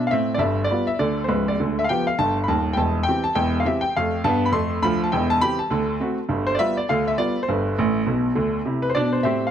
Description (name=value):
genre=jazz, stride piano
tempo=204 BPM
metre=4/4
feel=swing 58% on 8ths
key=C major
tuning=A4 = 438 Hz
part: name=clear baby grand piano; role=solo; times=0.0-9.5 s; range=Db1 to C6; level=-19 LUFS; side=equal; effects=tape echo
room=moderate studio reverb, RT60 0.6 s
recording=none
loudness=-19 LUFS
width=side -9 dB against mid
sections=0.0-8.7 A section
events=grand piano fill 7.8-8.7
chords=0.4 G7; 1.6 G7/D; 2.8 C/E; 4.0 F; 5.1 C/E; 5.7 D7; 6.3 G7; 7.5 G; 8.7 C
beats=0.13 | 0.42 0.72 1.01 1.30 | 1.60 1.89 2.19 2.48 | 2.78 3.07 3.37 3.66 | 3.96 4.25 4.55 4.84 | 5.13 5.43 5.72 6.02 | 6.31 6.61 6.90 7.20 | 7.49 7.78 8.08 8.37 | 8.66 8.96 9.25